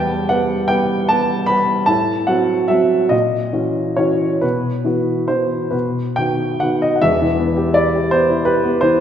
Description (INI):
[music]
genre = classical, romantic character piece for solo piano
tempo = 44-59 BPM (dotted quarters)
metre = 6/8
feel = rubato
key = E minor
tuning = A4 = 439 Hz
[part]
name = warm upright piano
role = solo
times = 0.0-9.0 s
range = E1 to B5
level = -15 LUFS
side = equal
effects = none
[sound]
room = wet concert hall reverb, RT60 2.0 s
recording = recorded in a church or concert hall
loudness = -15 LUFS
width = side -9 dB against mid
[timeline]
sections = 0.0-7.0 A section; 7.0-9.0 B section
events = none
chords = 0.0 Em; 1.9 F#dim/A; 3.1 F#7/A#; 4.4 Bsus4; 5.7 B; 7.0 Em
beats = 0.70 | 1.89 3.12 | 4.42 5.73 | 7.02 8.11